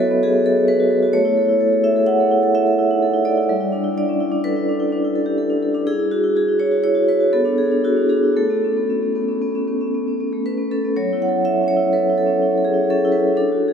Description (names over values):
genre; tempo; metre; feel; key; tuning
classical, contemporary piece for solo vibraphone; 111-132 BPM; 5/4; rubato; A major; A4 = 441 Hz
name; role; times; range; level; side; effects
vibraphone with medium hard mallets; solo; 0.0-13.7 s; F#3 to F#5; -16 LUFS; equal; none
room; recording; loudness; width
wet cathedral reverb, RT60 6.4 s; in a vast, echoing space; -16 LUFS; side -7 dB against mid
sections
0.0-11.0 A section; 11.0-13.7 B section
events
none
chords
0.0 F#m11; 1.1 A6; 3.5 G69; 5.9 Esus2; 7.3 Bmadd11; 8.4 Aadd9; 11.0 F#m7